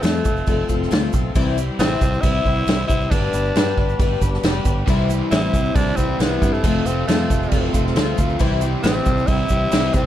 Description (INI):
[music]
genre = folk rock and heartland rock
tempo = 136 BPM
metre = 4/4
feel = straight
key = C major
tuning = A4 = 436 Hz
[part]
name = raspy tenor saxophone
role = melody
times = 0.0-10.1 s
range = A3 to E4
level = -24 LUFS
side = equal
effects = none
[part]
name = picked twelve-string acoustic guitar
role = accompaniment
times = 0.0-10.1 s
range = C3 to C5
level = -24 LUFS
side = left 6 dB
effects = none
[part]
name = tonewheel organ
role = sustained chords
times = 0.0-10.1 s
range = G3 to A4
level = -33 LUFS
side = right 1 dB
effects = none
[part]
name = fingered electric bass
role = bass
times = 0.0-10.1 s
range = F1 to G2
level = -23 LUFS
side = right 1 dB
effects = none
[part]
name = natural country drum kit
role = drums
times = 0.0-10.1 s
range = crash cymbal, kick drum, snare drum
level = -20 LUFS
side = right 1 dB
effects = none
[part]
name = tube shaker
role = percussion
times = 0.0-10.0 s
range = none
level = -40 LUFS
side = right 12 dB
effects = none
[part]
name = overdriven electric guitar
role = riff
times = 4.9-10.1 s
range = F2 to G4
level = -26 LUFS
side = right 2 dB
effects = none
[sound]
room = small room ambience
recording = dark, warm production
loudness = -16 LUFS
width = side -12 dB against mid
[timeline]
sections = 0.0-10.1 A section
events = none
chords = 0.0 F; 1.4 C; 3.1 G; 4.9 C; 6.6 F; 8.4 C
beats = 0.03 0.47 0.91 | 1.35 1.79 2.23 2.67 | 3.11 3.55 3.99 4.43 | 4.88 5.32 5.76 6.20 | 6.64 7.08 7.52 7.96 | 8.40 8.85 9.29 9.73